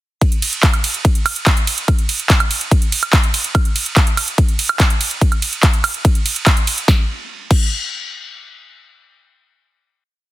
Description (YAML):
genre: trance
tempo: 144 BPM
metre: 4/4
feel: straight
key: none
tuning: none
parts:
  - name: big-room dance drum kit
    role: drums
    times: 0.2-7.6 s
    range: crash cymbal, handclaps, hi-hat, ride cymbal, snare drum, woodblock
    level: -18 LUFS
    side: right 2 dB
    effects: none
  - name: electronic kick drum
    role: drums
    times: 0.2-7.6 s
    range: none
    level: -14 LUFS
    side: equal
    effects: none
room: digital ambience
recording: dense, heavily limited modern master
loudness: -13 LUFS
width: side -16 dB against mid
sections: 0.2-6.9 drop; 6.9-8.5 final hit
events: drop 0.2-6.9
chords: none